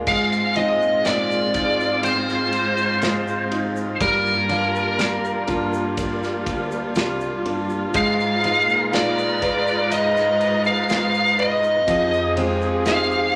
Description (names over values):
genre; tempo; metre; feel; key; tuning
pop ballad; 61 BPM; 4/4; straight; unclear; A4 = 441 Hz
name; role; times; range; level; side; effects
warm concert grand piano; accompaniment; 0.0-13.4 s; F3 to Cb5; -30 LUFS; equal; none
warm studio string section; sustained chords; 0.0-13.4 s; F3 to Bb5; -30 LUFS; equal; none
picked steel-string acoustic guitar; arpeggios; 0.0-13.4 s; F2 to F4; -30 LUFS; equal; none
warm studio cello section; bass; 0.0-13.1 s; C2 to Bb2; -32 LUFS; equal; none
smooth overdriven lead guitar; melody; 0.1-13.3 s; Bb4 to F5; -23 LUFS; equal; none
modern studio drum kit; drums; 0.1-13.1 s; crash cymbal, kick drum, ride cymbal, snare drum; -32 LUFS; equal; none
egg shaker; percussion; 0.1-13.3 s; none; -50 LUFS; equal; none
room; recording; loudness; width
wet large studio reverb, RT60 0.8 s; none; -21 LUFS; mono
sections
0.1-13.4 A section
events
none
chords
0.1 Ab6; 4.0 Gm7; 7.9 Abm6; 11.9 Fm7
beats
| 0.07 1.06 2.04 3.02 | 4.01 4.99 5.97 6.96 | 7.94 8.93 9.91 10.89 | 11.88 12.86